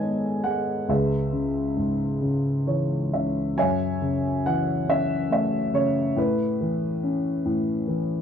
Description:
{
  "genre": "classical, lyrical solo piano",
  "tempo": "46 BPM (dotted quarters)",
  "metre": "6/8",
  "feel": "rubato",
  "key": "C# minor, F# minor from 3.6 s",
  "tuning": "A4 = 440 Hz",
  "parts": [
    { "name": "dark grand piano", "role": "solo", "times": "0.0-8.2 s", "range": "C#2 to G#5", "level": "-22 LUFS", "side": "equal", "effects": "none" }
  ],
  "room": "light reverb",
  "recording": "dark, warm production",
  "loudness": "-22 LUFS",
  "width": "side -8 dB against mid",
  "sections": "0.0-3.6 A section; 3.6-8.2 B section",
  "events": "grand piano fill 2.2-3.6",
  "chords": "0.0 G#m; 0.9 C#m7; 3.6 F#m7; 6.2 Aadd9",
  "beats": "| 0.89 2.22 | 3.58 4.88 | 6.17 7.45"
}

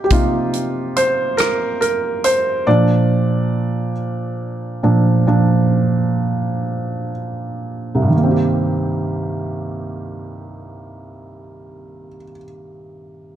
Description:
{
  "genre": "six-eight pop ballad",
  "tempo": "40-47 BPM (dotted quarters)",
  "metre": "6/8",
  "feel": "straight",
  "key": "C minor",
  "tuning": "A4 = 440 Hz",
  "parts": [
    { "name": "felt-muted upright piano", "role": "accompaniment", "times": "0.0-13.4 s", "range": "C2 to D5", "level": "-17 LUFS", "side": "right 1 dB", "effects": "none" },
    { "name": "natural country drum kit", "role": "drums", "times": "0.1-2.4 s", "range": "hi-hat, kick drum, rim click", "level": "-20 LUFS", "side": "left 1 dB", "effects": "none" }
  ],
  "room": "light reverb, studio reverb",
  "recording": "dark, warm production",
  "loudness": "-16 LUFS",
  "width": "side -11 dB against mid",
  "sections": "0.0-8.1 A section; 8.1-11.2 B section",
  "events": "felt piano solo 0.0-8.1; slowing down 2.7-8.1",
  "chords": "0.0 Cm7; 2.7 Bb; 8.1 Cm7",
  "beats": "| 0.10 1.38 | 2.66 3.95 | 5.28 6.66 | 8.13 9.65"
}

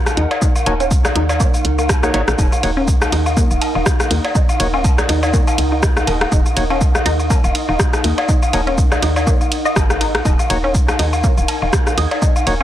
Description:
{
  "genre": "minimal techno",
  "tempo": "122 BPM",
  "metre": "4/4",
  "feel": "swing 56% on 16ths",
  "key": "Eb minor",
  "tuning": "A4 = 438 Hz",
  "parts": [
    { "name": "warbly tape-like pad", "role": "texture", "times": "0.0-12.6 s", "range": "Eb4 to Gb5", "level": "-25 LUFS", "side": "equal", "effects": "chorus, built-in reverb, sidechain pumping" },
    { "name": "punchy analog drum machine", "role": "drums", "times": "0.1-12.6 s", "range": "cabasa, hi-hat, ride cymbal, rim click", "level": "-24 LUFS", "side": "right 1 dB", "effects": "none" },
    { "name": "electronic rim click, cowbell and woodblock", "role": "percussion", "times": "0.1-12.6 s", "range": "none", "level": "-21 LUFS", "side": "left 2 dB", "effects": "tape echo" },
    { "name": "resonant blip pluck", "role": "riff", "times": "0.2-12.6 s", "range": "Bb3 to Eb5", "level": "-24 LUFS", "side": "equal", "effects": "phaser, sidechain pumping, tape echo" },
    { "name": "woody FM bass", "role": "bass", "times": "0.2-12.6 s", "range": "Eb1 to Eb2", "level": "-20 LUFS", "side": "equal", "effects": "sidechain pumping" },
    { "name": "electronic kick drum", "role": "drums", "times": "0.4-12.3 s", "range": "none", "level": "-16 LUFS", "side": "equal", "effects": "none" },
    { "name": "percussive organ stab", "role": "stabs", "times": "0.7-12.5 s", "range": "Bb3 to Db5", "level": "-24 LUFS", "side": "left 1 dB", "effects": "chorus, tape echo" },
    { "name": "flickering grainy texture", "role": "texture", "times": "2.8-12.6 s", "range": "Eb4 to Ab5", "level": "-30 LUFS", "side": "right 1 dB", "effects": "built-in reverb, sidechain pumping" }
  ],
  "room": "little or no reverb",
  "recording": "dry, gritty hardware recording",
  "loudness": "-13 LUFS",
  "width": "side -12 dB against mid",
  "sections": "0.0-12.6 A section",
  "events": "none",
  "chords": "0.0 Ebm7",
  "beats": "| 0.42 0.91 1.40 1.89 | 2.38 2.88 3.37 3.86 | 4.35 4.84 5.34 5.83 | 6.32 6.81 7.30 7.79 | 8.29 8.78 9.27 9.76 | 10.25 10.75 11.24 11.73 | 12.22"
}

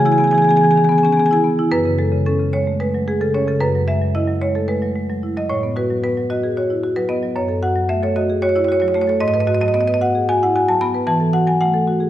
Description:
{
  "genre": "classical, contemporary piece for solo marimba",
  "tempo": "224 BPM (eighths)",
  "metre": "7/8",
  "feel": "straight",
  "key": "F# dorian",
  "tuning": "A4 = 440 Hz",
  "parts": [
    { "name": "marimba with medium hard mallets", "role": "solo", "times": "0.0-12.1 s", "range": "F#2 to B5", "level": "-15 LUFS", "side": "equal", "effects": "none" }
  ],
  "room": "wet recital hall reverb, RT60 1.7 s",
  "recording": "recorded in a church or concert hall",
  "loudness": "-15 LUFS",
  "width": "side -12 dB against mid",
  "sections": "0.0-1.7 A section; 1.7-12.1 B section",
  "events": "none",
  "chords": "0.0 C#m7; 1.7 F#madd9; 3.6 Eadd9/F#; 5.5 Asus2; 7.4 F#m; 9.2 G#m7; 11.1 Esus24",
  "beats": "0.06 0.34 0.62 0.90 1.18 1.45 | 1.73 2.00 2.27 2.55 2.82 3.08 3.35 | 3.62 3.89 4.16 4.43 4.70 4.96 5.23 | 5.50 5.77 6.04 6.30 6.57 6.83 7.10 | 7.36 7.63 7.89 8.16 8.42 8.69 8.96 | 9.22 9.49 9.75 10.02 10.28 10.54 10.80 | 11.06 11.33 11.59 11.86"
}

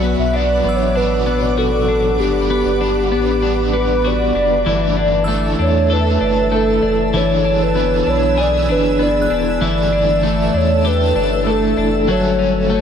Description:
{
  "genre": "dream pop",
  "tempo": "97 BPM",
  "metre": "4/4",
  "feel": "straight",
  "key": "unclear",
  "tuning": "A4 = 439 Hz",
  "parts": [
    { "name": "warbly nostalgic lead", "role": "melody", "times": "0.0-12.8 s", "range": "G4 to E5", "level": "-18 LUFS", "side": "equal", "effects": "chorus, analog delay" },
    { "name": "crunchy overdriven guitar", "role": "accompaniment", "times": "0.0-12.8 s", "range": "G2 to B4", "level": "-23 LUFS", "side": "right 2 dB", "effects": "tremolo, analog chorus" },
    { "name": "shimmering ambient pad", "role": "sustained chords", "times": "0.0-12.8 s", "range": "A4 to E6", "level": "-24 LUFS", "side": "left 1 dB", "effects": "chorus, built-in reverb" },
    { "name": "twelve-string electric guitar", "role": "arpeggios", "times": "0.0-12.8 s", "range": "E3 to A4", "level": "-20 LUFS", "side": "left 3 dB", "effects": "wide subtle chorus, analog delay" },
    { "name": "warm sub bass", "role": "bass", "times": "0.0-12.8 s", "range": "E1 to E2", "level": "-21 LUFS", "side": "right 1 dB", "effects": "none" },
    { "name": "glassy synth bell", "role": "texture", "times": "0.7-9.9 s", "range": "E6 to F#6", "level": "-34 LUFS", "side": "right 1 dB", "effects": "chorus, analog delay" }
  ],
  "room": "light reverb, digital ambience",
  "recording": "echo-heavy mix",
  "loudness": "-14 LUFS",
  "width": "side -8 dB against mid",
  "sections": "0.0-4.7 A section; 4.7-12.8 B section",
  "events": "none",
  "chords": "0.0 Bm; 2.2 Gmaj7; 4.7 Asus4/G; 7.1 E7/G; 9.6 Asus4/G; 12.1 Dmaj7/G",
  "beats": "0.33 0.95 1.57 | 2.19 2.81 3.43 4.04 | 4.66 5.28 5.90 6.52 | 7.14 7.76 8.38 8.99 | 9.61 10.23 10.85 11.47 | 12.09 12.71"
}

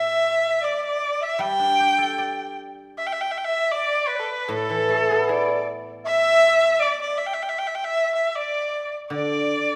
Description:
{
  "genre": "chinese traditional, Chinese chamber ensemble",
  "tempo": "78 BPM",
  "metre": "2/4",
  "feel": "rubato",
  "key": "D zhi mode",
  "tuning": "A4 = 440 Hz",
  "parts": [
    { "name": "clear erhu", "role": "melody", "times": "0.0-9.8 s", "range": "A4 to G5", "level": "-26 LUFS", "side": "equal", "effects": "none" },
    { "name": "bright reedy dizi", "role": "second line", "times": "0.0-9.8 s", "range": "A4 to G5", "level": "-25 LUFS", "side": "equal", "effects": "none" },
    { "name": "guzheng", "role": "accompaniment", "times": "0.0-9.8 s", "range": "A2 to D5", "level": "-28 LUFS", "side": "equal", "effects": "none" }
  ],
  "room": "wet recital hall reverb, RT60 1.6 s",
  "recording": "recorded in a church or concert hall",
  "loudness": "-22 LUFS",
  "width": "mono",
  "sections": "0.0-9.1 A section",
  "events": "none",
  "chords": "none",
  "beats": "0.65 | 1.41 2.19 | 2.97 3.75 | 4.51 5.28 | 6.04 6.80 | 7.57 8.35 | 9.12"
}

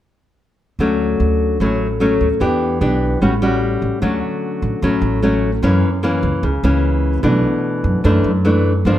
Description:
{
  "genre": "bossa nova",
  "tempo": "149 BPM",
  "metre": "4/4",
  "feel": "straight",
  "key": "D major",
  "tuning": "A4 = 440 Hz",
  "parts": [
    { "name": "nylon-string guitar", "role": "accompaniment", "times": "0.8-9.0 s", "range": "F#2 to G4", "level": "-16 LUFS", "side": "left 1 dB", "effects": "none" },
    { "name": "upright bass", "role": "bass", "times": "0.8-9.0 s", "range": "G1 to F#2", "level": "-19 LUFS", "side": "right 1 dB", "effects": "none" }
  ],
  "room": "moderate large studio reverb, RT60 1.2 s",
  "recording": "none",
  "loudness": "-14 LUFS",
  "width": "side -12 dB against mid",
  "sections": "0.8-4.0 A section; 4.0-9.0 B section",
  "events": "none",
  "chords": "0.8 Dmaj7; 2.4 Em7; 3.2 A6; 4.0 Dmaj7; 5.6 F#7; 7.2 Bm7",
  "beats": "| 0.79 1.19 1.60 2.00 | 2.40 2.81 3.21 3.61 | 4.01 4.42 4.82 5.22 | 5.63 6.03 6.43 6.83 | 7.24 7.64 8.04 8.45 | 8.85"
}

